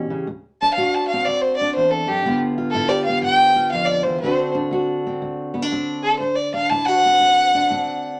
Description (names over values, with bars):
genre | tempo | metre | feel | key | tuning
acoustic country blues, solo or duo | 122 BPM | 4/4 | swing 67% on 8ths | D mixolydian | A4 = 436 Hz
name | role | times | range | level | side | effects
fingerpicked steel-string acoustic guitar | accompaniment | 0.0-8.2 s | D2 to G4 | -26 LUFS | equal | none
dark fiddle | melody | 0.6-8.2 s | G4 to A5 | -20 LUFS | equal | none
room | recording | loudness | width
moderate studio reverb, RT60 0.5 s | none | -19 LUFS | mono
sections
0.3-8.2 A section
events
fiddle solo 0.3-8.2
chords
0.3 D7; 2.2 G7; 4.2 D7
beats
| 0.27 0.76 1.26 1.75 | 2.24 2.74 3.23 3.73 | 4.22 4.71 5.21 5.70 | 6.19 6.69 7.18 7.67 | 8.16